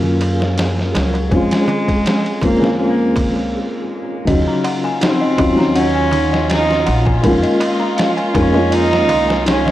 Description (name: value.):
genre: trip hop.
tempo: 81 BPM.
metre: 4/4.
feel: swing 54% on 16ths.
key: Eb dorian.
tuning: A4 = 440 Hz.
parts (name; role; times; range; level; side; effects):
felt-muted upright piano; accompaniment; 0.0-9.7 s; Db3 to F4; -18 LUFS; left 1 dB; tremolo, tape echo.
upright bass; bass; 0.0-9.7 s; Bb1 to Gb2; -20 LUFS; equal; none.
darbuka; percussion; 0.0-9.7 s; none; -29 LUFS; right 2 dB; none.
flickering grainy texture; texture; 0.0-3.5 s; Ab4; -32 LUFS; right 1 dB; none.
trip hop sampler-style drum kit; drums; 0.2-9.7 s; kick drum, ride cymbal, snare drum; -21 LUFS; equal; overdrive.
rich cello; melody; 1.0-9.7 s; Gb3 to Eb4; -19 LUFS; right 2 dB; tape echo.
dark studio violin section; sustained chords; 4.3-9.7 s; F4; -24 LUFS; equal; none.
dark detuned synth bell; arpeggios; 4.3-9.7 s; Eb4 to Bb5; -22 LUFS; left 2 dB; chorus, tape echo.
room: studio ambience.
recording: dry, gritty hardware recording, transformer saturation.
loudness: -13 LUFS.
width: side -14 dB against mid.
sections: 0.0-4.3 A section; 4.3-9.7 B section.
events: break 3.5-4.3.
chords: 0.0 Gbmaj7; 1.3 Dbmaj7/F; 4.3 Ebm9; 7.2 Bbm7/F.